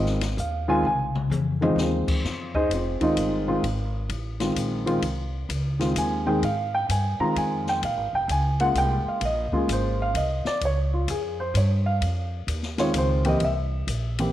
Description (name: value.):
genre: jazz piano trio.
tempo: 129 BPM.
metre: 3/4.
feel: swing 66% on 8ths.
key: F minor.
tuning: A4 = 440 Hz.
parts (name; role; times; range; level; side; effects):
dark grand piano; melody; 0.0-14.3 s; Db3 to Bb5; -24 LUFS; equal; slapback echo.
upright bass; bass; 0.0-14.3 s; F1 to Ab2; -27 LUFS; equal; none.
open jazz drum kit; drums; 0.1-14.3 s; crash cymbal, hi-hat, kick drum, ride cymbal, snare drum, toms; -32 LUFS; left 3 dB; none.
room: light reverb, studio reverb.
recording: 1960s-style stereo.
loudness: -22 LUFS.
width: side -13 dB against mid.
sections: 0.0-2.2 A section; 2.2-14.3 A section.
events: grand piano solo 0.0-14.3; drum fill 0.8-1.8.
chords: 0.0 Fm7; 7.8 Bbm7; 12.0 Fm7; 13.4 C7.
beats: 0.38 | 0.84 1.31 1.77 | 2.24 2.70 3.17 | 3.63 4.10 4.56 | 5.03 5.49 5.96 | 6.42 6.89 7.35 | 7.82 8.28 8.75 | 9.22 9.68 10.15 | 10.61 11.08 11.54 | 12.01 12.48 12.94 | 13.41 13.88.